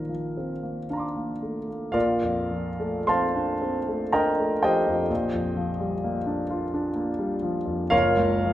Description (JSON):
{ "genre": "classical, impressionist solo piano", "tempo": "50-65 BPM", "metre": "3/4", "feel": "rubato", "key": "Bb major", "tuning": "A4 = 441 Hz", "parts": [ { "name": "clear grand piano", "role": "solo", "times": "0.0-8.5 s", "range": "Gb1 to D6", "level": "-23 LUFS", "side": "equal", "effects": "none" } ], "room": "wet recital hall reverb, RT60 1.4 s", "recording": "none", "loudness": "-23 LUFS", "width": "side -13 dB against mid", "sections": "0.0-1.9 A section; 1.9-8.5 B section", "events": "none", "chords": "0.0 Bbadd9; 1.9 Bbmaj9; 5.1 Gm7/Bb; 7.9 Gbmaj7", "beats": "0.88 | 1.95 3.09 4.13 | 5.10 6.04 6.97 | 7.92" }